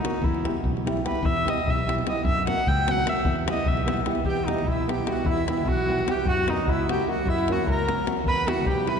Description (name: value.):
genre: balkan folk, Balkan wedding band.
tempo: 300 BPM (eighths).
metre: 5/8.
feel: straight.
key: E hungarian minor.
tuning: A4 = 441 Hz.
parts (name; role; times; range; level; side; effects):
warm viola; melody; 0.0-9.0 s; D#4 to G5; -26 LUFS; equal; none.
flamenco guitar; accompaniment; 0.0-9.0 s; F#3 to G4; -29 LUFS; equal; none.
davul; percussion; 0.0-9.0 s; none; -28 LUFS; left 1 dB; none.
fingered electric bass; bass; 0.2-9.0 s; B1 to F#2; -29 LUFS; equal; none.
accordion; second line; 4.3-9.0 s; D#5 to B5; -32 LUFS; right 4 dB; none.
room: wet cathedral reverb, RT60 4.5 s.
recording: recorded in a church or concert hall, nothing above 11.0 kHz.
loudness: -22 LUFS.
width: side -6 dB against mid.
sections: 0.0-4.3 A section; 4.3-9.0 B section.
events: viola solo 0.0-4.3.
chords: 0.2 Em; 2.3 F#; 3.3 Em; 6.3 F#; 8.3 Em.